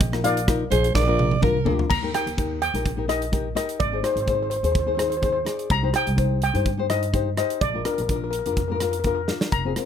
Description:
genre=calypso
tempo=126 BPM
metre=4/4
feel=swing 53% on 16ths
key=Eb major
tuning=A4 = 444 Hz
part: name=steel pan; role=melody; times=0.0-9.9 s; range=Bb4 to Bb5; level=-26 LUFS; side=left 1 dB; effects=none
part: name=upright bass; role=bass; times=0.0-9.7 s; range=F1 to G2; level=-26 LUFS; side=right 1 dB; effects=none
part: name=modern studio drum kit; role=drums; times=0.0-9.9 s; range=crash cymbal, hi-hat, kick drum, rim click, snare drum, toms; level=-26 LUFS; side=right 1 dB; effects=none
part: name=nylon-string guitar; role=accompaniment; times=0.1-9.9 s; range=C4 to D5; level=-26 LUFS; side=left 8 dB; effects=none
part: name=breathy alto saxophone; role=second line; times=0.7-1.9 s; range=Bb4 to D5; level=-24 LUFS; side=right 6 dB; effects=none
room=little or no reverb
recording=close, detailed microphones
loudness=-20 LUFS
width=side -8 dB against mid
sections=0.0-1.9 A section; 1.9-9.9 B section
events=drum fill 1.0-1.9, 9.3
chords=0.0 Bb7sus4; 1.0 Bb; 1.9 Eb; 3.8 Ab; 5.7 Cm; 7.6 Bb

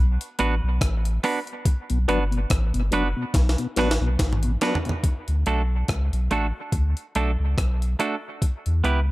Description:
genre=dub reggae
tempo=71 BPM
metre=4/4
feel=swing 57% on 16ths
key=unclear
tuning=A4 = 439 Hz
part: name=warm sub bass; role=bass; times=0.0-9.1 s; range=F#1 to E2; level=-22 LUFS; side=equal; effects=none
part: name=breakbeat sampler-style drum kit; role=drums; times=0.2-9.1 s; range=hi-hat, kick drum, rim click, snare drum, toms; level=-24 LUFS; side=equal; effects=none
part: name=semi-hollow electric guitar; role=accompaniment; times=0.4-9.0 s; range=A3 to B4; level=-27 LUFS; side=right 3 dB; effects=dub echo
part: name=mellow tonewheel organ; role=accompaniment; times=1.9-4.9 s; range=B2 to D4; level=-29 LUFS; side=left 3 dB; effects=overdrive, chorus vibrato, slow rotary speaker
room=light reverb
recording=none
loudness=-21 LUFS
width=side -19 dB against mid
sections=0.0-5.0 A section; 5.0-9.1 B section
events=break 0.0-1.7; drum fill 3.3-5.0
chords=0.0 Bm; 5.0 D; 8.4 Em

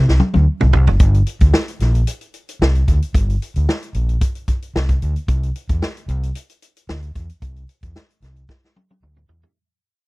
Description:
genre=funk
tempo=112 BPM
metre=4/4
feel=straight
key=G dorian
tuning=A4 = 440 Hz
part: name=overdriven fingered electric bass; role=bass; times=0.0-9.4 s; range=F#1 to E2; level=-16 LUFS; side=equal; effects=none
part: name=vintage drum kit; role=drums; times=0.1-9.6 s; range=hi-hat, kick drum, snare drum, toms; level=-17 LUFS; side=equal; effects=none
room=little or no reverb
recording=dry, close 1970s-style studio recording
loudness=-15 LUFS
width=side -23 dB against mid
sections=0.0-1.0 A section; 1.0-9.6 B section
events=drum fill 0.0-1.0, 8.5-9.6; fade-out 1.0-9.6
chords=none

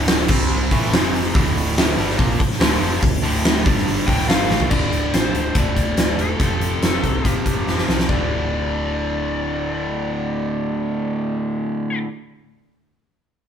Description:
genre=hard rock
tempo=142 BPM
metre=4/4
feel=straight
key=D minor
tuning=A4 = 440 Hz
part: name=cranked stack guitar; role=riff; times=0.0-12.1 s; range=D2 to C4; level=-22 LUFS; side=right 1 dB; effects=overdrive
part: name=hollow-body short-scale picked electric bass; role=bass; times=0.0-12.0 s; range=D1 to C2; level=-26 LUFS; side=equal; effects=none
part: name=huge arena drum kit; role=drums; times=0.1-8.2 s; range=crash cymbal, hi-hat, kick drum, snare drum, toms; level=-18 LUFS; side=equal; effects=none
part: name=biting lead guitar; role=melody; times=4.1-12.0 s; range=A4 to G5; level=-27 LUFS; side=left 6 dB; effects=overdrive
room=moderate large studio reverb, RT60 1.2 s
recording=band playing live in one room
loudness=-17 LUFS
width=side -8 dB against mid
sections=0.0-4.7 A section; 4.7-8.1 B section; 8.1-11.5 C section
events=drum fill 4.5, 7.7-8.1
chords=0.3 C5; 0.7 A5; 0.9 F5; 1.3 Dm; 3.6 G5; 4.1 Dm; 4.7 D5; 6.4 F; 8.1 D5

